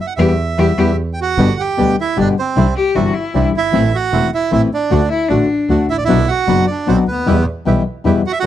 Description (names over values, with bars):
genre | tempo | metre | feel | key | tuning
tango | 153 BPM | 3/4 | rubato | G major | A4 = 441 Hz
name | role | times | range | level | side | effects
bandoneon | melody | 0.0-8.5 s | B3 to G5 | -18 LUFS | right 5 dB | none
clear cello | second line | 0.2-5.8 s | D4 to G4 | -18 LUFS | left 4 dB | none
nylon-string guitar | accompaniment | 0.2-8.5 s | B2 to G4 | -16 LUFS | left 5 dB | none
bandoneon | stabs | 0.2-8.5 s | A3 to G4 | -25 LUFS | right 6 dB | none
clear double bass | bass | 0.2-8.2 s | E1 to E2 | -18 LUFS | right 2 dB | none
room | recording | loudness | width
studio reverb | dry, close 1970s-style studio recording | -13 LUFS | side -11 dB against mid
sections
0.0-1.4 A section; 1.4-8.5 B section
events
band accent 0.2-1.4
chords
0.2 Em; 1.4 G; 2.6 Cadd9; 3.7 Am; 4.9 D; 6.1 Bm; 7.3 Em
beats
| 0.19 0.59 0.99 | 1.39 1.78 2.17 | 2.57 2.96 3.35 | 3.74 4.13 4.52 | 4.91 5.30 5.69 | 6.09 6.48 6.88 | 7.27 7.66 8.05 | 8.44